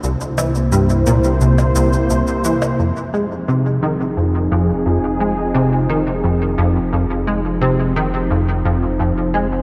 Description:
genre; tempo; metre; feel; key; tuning
ambient, sequencer-driven space music; 87 BPM; 4/4; straight; F minor; A4 = 440 Hz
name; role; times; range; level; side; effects
sweeping resonant pad; sustained chords; 0.2-9.6 s; C3 to C5; -22 LUFS; equal; chorus
plucky analog bass; riff; 0.0-9.5 s; C2 to Ab3; -20 LUFS; equal; ensemble chorus, delay
round analog bass; bass; 0.0-9.6 s; F1 to C2; -26 LUFS; equal; none
cabasa and percussion blips; percussion; 0.0-2.8 s; none; -31 LUFS; equal; delay
room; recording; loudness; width
wet cathedral reverb, RT60 6.0 s; in a vast, echoing space; -17 LUFS; mono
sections
0.0-2.8 A section; 2.8-9.6 B section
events
none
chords
0.0 C7; 2.8 Fm7

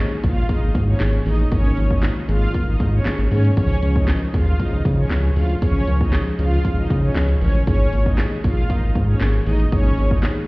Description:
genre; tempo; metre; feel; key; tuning
dance-pop; 117 BPM; 4/4; straight; Db major; A4 = 441 Hz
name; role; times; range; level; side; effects
mellow tine electric piano; accompaniment; 0.0-10.4 s; Eb3 to Bb4; -26 LUFS; left 1 dB; sidechain pumping
round analog bass; bass; 0.0-10.3 s; Ab1 to Db3; -18 LUFS; equal; sidechain pumping
supersaw pad; melody; 0.2-10.2 s; Db4 to F5; -27 LUFS; right 1 dB; none
house drum kit; drums; 0.2-10.4 s; handclaps, hi-hat, kick drum, snare drum; -21 LUFS; equal; none
room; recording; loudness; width
little or no reverb; heard muffled through a wall, stone room reverb, EQ; -16 LUFS; side -23 dB against mid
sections
0.0-10.5 A section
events
none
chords
0.0 Absus2; 3.6 Db; 7.7 Absus2

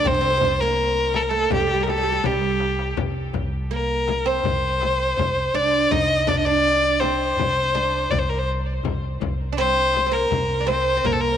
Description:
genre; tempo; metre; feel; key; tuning
Arabic maqam ensemble; 82 BPM; 4/4; straight; C minor; A4 = 441 Hz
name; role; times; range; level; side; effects
rich violin; melody; 0.0-11.4 s; G4 to Eb5; -21 LUFS; left 2 dB; tape echo
oud; second line; 0.0-11.4 s; G3 to Eb4; -27 LUFS; right 9 dB; tape echo
darbuka; percussion; 0.0-11.2 s; none; -33 LUFS; left 3 dB; none
upright bass; bass; 0.1-11.4 s; C2; -27 LUFS; equal; none
frame drum; percussion; 0.1-11.2 s; none; -30 LUFS; left 8 dB; none
room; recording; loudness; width
moderate plate reverb, RT60 2.7 s; 1960s-style stereo with parts hard left and right; -19 LUFS; side -9 dB against mid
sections
0.0-11.4 A section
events
drum fill 2.3-3.0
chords
none

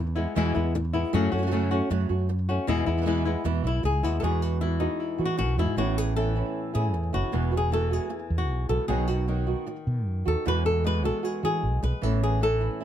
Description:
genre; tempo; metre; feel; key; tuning
flamenco; 154 BPM; 4/4; straight; E major; A4 = 440 Hz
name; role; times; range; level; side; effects
fretless electric bass; bass; 0.0-12.7 s; E1 to E3; -26 LUFS; right 1 dB; none
flamenco guitar; melody; 0.2-12.8 s; E2 to B4; -28 LUFS; left 4 dB; none
flamenco guitar; stabs; 0.2-12.8 s; B2 to F#4; -32 LUFS; right 9 dB; slapback echo
room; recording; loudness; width
little or no reverb; close, detailed microphones; -24 LUFS; side -10 dB against mid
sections
0.0-4.2 A section; 4.2-12.8 B section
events
none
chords
0.0 E; 1.1 F#m; 2.7 E; 4.2 Eadd9; 5.8 Aadd9; 7.3 Eadd9; 8.9 B; 10.5 Eadd9; 12.0 Aadd9

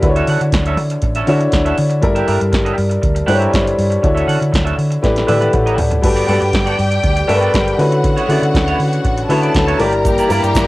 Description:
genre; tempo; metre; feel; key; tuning
disco; 120 BPM; 4/4; straight; D major; A4 = 440 Hz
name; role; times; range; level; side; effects
clean electric guitar; accompaniment; 0.0-10.6 s; Bb3 to F#5; -23 LUFS; right 4 dB; wide subtle chorus, cassette tape
clear baby grand piano; accompaniment; 0.0-10.7 s; C#3 to F#5; -16 LUFS; left 2 dB; cassette tape
hollow-body short-scale fingered electric bass; bass; 0.0-10.7 s; G1 to D3; -18 LUFS; equal; none
electro analog drum machine; drums; 0.0-10.7 s; crash cymbal, hi-hat, kick drum, snare drum, toms; -18 LUFS; equal; cassette tape
clear studio string section; second line; 6.0-10.7 s; F#4 to Bb5; -21 LUFS; equal; cassette tape
clear symphonic string section; sustained chords; 10.0-10.7 s; E3 to G4; -20 LUFS; left 1 dB; cassette tape
tube shaker; percussion; 10.1-10.7 s; none; -36 LUFS; right 6 dB; none
room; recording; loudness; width
light reverb; home recording on cassette; -12 LUFS; side -18 dB against mid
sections
0.0-6.0 A section; 6.0-10.7 B section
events
drum fill 5.0-6.0; grand piano fill 5.3-6.0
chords
0.0 Dmaj9; 2.0 Gm6; 4.0 Dmaj9; 5.0 A9sus4; 6.0 Gmaj9; 7.8 Dmaj13; 9.8 Gm6

